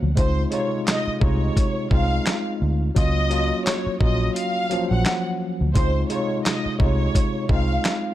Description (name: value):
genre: hip hop, boom-bap hip-hop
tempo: 86 BPM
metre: 4/4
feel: swing 57% on 16ths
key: Db major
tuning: A4 = 440 Hz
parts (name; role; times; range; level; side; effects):
- tine electric piano; accompaniment; 0.0-8.1 s; C3 to F4; -25 LUFS; equal; overdrive, fast stereo tremolo, cassette tape
- vintage muted fingered electric bass; bass; 0.0-7.8 s; Bb1 to D2; -22 LUFS; equal; none
- warm studio violin section; melody; 0.2-8.0 s; C5 to Gb5; -27 LUFS; equal; tape echo
- dusty soul sampler-style drum kit; drums; 0.2-8.0 s; handclaps, hi-hat, kick drum, snare drum; -22 LUFS; equal; none
room: digital ambience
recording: dark, warm production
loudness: -19 LUFS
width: side -13 dB against mid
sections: 0.0-8.1 A section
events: kick muted 4.4-5.8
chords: 0.2 Dbmaj7; 3.0 Ebm7; 5.8 Dbmaj7